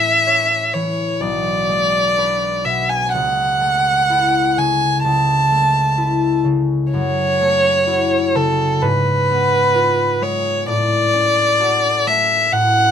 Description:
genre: classical, romantic duo for violin and harp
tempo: 64 BPM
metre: 4/4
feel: rubato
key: A major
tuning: A4 = 440 Hz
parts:
  - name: warm violin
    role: melody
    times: 0.0-12.9 s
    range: A4 to A5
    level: -15 LUFS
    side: right 1 dB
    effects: none
  - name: concert harp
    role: accompaniment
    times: 0.0-12.9 s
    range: B1 to C#5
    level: -20 LUFS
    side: left 2 dB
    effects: none
room: light reverb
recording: close, detailed microphones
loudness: -14 LUFS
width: side -8 dB against mid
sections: 0.0-12.9 A section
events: none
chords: 0.0 A; 1.2 G#dim/B; 3.1 A/C#; 6.9 F#m7; 8.8 Fdim/Ab; 10.7 F#m/A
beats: 0.27 1.21 2.17 | 3.13 4.10 5.04 5.97 | 6.91 7.87 8.82 9.75 | 10.68 11.60 12.52

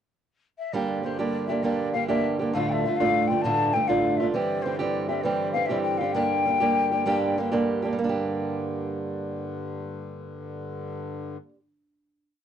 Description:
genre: celtic folk, Celtic slide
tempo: 132 BPM (dotted quarters)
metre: 12/8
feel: straight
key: G dorian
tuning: A4 = 441 Hz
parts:
  - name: breathy mellow wooden flute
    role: melody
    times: 0.6-7.7 s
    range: C5 to A5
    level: -26 LUFS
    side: left 6 dB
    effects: none
  - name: fingerpicked old ladder-braced acoustic guitar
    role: accompaniment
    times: 0.7-11.6 s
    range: D2 to G4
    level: -25 LUFS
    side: right 4 dB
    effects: none
  - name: hand-pumped harmonium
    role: drone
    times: 0.7-11.4 s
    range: G2 to D3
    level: -35 LUFS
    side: left 3 dB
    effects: none
room: light reverb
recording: dry, close 1970s-style studio recording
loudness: -23 LUFS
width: side -9 dB against mid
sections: 0.0-0.7 pickup bar; 0.7-8.0 A section; 8.0-11.7 final chord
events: none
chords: 0.0 N.C.; 0.7 Gm; 2.5 Dm; 4.3 C; 6.1 Gm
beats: 0.29 | 0.74 1.19 1.64 2.09 | 2.54 2.99 3.44 3.89 | 4.34 4.79 5.24 5.69 | 6.14 6.60 7.05 7.51 | 7.97 8.43 8.89 9.35 | 9.81 10.27 10.73 11.20

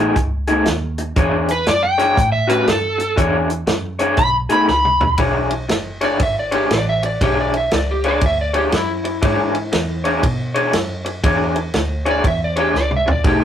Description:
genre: electric blues shuffle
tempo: 119 BPM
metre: 4/4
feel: swing 64% on 8ths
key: E mixolydian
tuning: A4 = 440 Hz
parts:
  - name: electric guitar through a small old amp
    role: riff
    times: 0.0-13.4 s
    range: A2 to C#5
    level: -19 LUFS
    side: left 2 dB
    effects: tremolo
  - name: vintage muted fingered electric bass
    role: bass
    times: 0.0-13.4 s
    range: F#1 to B2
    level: -24 LUFS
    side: right 1 dB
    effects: none
  - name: warm soul drum kit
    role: drums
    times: 0.2-13.4 s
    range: hi-hat, kick drum, ride cymbal, snare drum, toms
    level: -21 LUFS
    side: right 1 dB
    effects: none
  - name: overdriven slide guitar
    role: second line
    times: 1.5-5.2 s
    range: A4 to B5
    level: -16 LUFS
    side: equal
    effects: none
  - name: electric slide guitar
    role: melody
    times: 6.0-13.4 s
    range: E4 to E5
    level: -21 LUFS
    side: right 1 dB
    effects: none
room: moderate small room reverb, RT60 0.6 s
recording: rough rehearsal-room recording, tube saturation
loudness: -15 LUFS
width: side -9 dB against mid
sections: 0.0-5.2 A section; 5.2-13.4 A section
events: electric slide guitar solo 0.0-5.2, 5.2-13.4; drum fill 4.7-5.2, 12.7-13.2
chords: 0.0 B13; 1.2 E13; 2.2 A6; 3.2 E13; 4.2 B13; 5.2 E13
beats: 0.16 0.67 | 1.17 1.67 2.17 2.68 | 3.18 3.68 4.19 4.69 | 5.19 5.70 6.20 6.70 | 7.21 7.71 8.22 8.72 | 9.22 9.73 10.23 10.73 | 11.24 11.74 12.24 12.75 | 13.25

